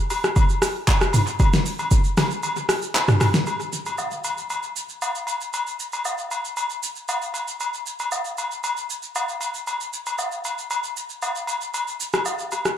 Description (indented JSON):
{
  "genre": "amapiano",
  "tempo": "116 BPM",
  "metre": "4/4",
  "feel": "straight",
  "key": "none",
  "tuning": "none",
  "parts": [
    { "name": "deep house drum kit", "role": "drums", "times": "0.1-12.8 s", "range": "handclaps, hi-hat, kick drum, rim click, shaker, snare drum, toms", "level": "-22 LUFS", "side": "equal", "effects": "analog delay" },
    { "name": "agogo bells and woodblock", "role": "percussion", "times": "0.1-12.6 s", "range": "none", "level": "-26 LUFS", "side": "left 2 dB", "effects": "none" }
  ],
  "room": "light reverb",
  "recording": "echo-heavy mix",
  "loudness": "-21 LUFS",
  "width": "side -10 dB against mid",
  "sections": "0.0-3.5 A section; 3.5-12.8 B section",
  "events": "drop 0.0-3.5; kick muted 2.4-3.5",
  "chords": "none",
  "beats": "0.36 0.88 | 1.40 1.91 2.43 2.95 | 3.46 3.98 4.50 5.02 | 5.53 6.05 6.57 7.09 | 7.60 8.12 8.64 9.15 | 9.67 10.19 10.71 11.22 | 11.74 12.26"
}